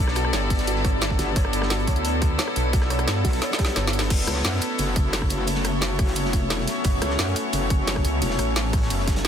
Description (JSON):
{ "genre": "dark technical drum and bass", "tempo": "175 BPM", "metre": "4/4", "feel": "straight", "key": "F# phrygian", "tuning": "A4 = 444 Hz", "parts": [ { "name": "deep dark ambient pad", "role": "sustained chords", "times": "0.0-9.3 s", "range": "A3 to D5", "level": "-29 LUFS", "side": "equal", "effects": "chorus, built-in reverb, sidechain pumping" }, { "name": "wide detuned saw bass", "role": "bass", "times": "0.0-4.3, 6.8-9.3 s", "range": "F#1 to G2", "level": "-25 LUFS", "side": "equal", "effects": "chorus, overdrive, sidechain pumping" }, { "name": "rich chamber string section", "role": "texture", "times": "0.0-9.3 s", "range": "B3 to D5", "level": "-28 LUFS", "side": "left 2 dB", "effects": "sidechain pumping" }, { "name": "crunchy breakbeat drum kit", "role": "drums", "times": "0.1-9.3 s", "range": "hi-hat, snare drum", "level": "-36 LUFS", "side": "equal", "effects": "high-pass filter on hats, high-pass filter on snare, high-pass filter on room" }, { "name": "drum and bass drum kit", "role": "drums", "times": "0.1-9.3 s", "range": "crash cymbal, hi-hat, ride cymbal, rim click, snare drum", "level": "-28 LUFS", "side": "equal", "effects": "overdrive" }, { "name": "soft round pluck", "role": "arpeggios", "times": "0.2-3.8 s", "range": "F#4 to C#5", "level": "-35 LUFS", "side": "right 1 dB", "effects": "lush chorus, sidechain pumping, ping-pong delay" }, { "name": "electronic kick drum", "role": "drums", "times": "0.5-9.1 s", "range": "none", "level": "-23 LUFS", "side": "equal", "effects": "overdrive" }, { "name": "metallic wobble bass", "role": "bass", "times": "1.2-8.4 s", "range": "E1 to F#2", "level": "-26 LUFS", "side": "equal", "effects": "chorus" } ], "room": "light reverb", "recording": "dense, heavily limited modern master", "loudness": "-20 LUFS", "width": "side -8 dB against mid", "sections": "0.0-4.1 A section; 4.1-9.3 A section", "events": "drop 0.0-4.1, 4.1-9.3; drum fill 3.4-4.1; kick drops out 3.8-4.1", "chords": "0.0 G; 4.1 F#m" }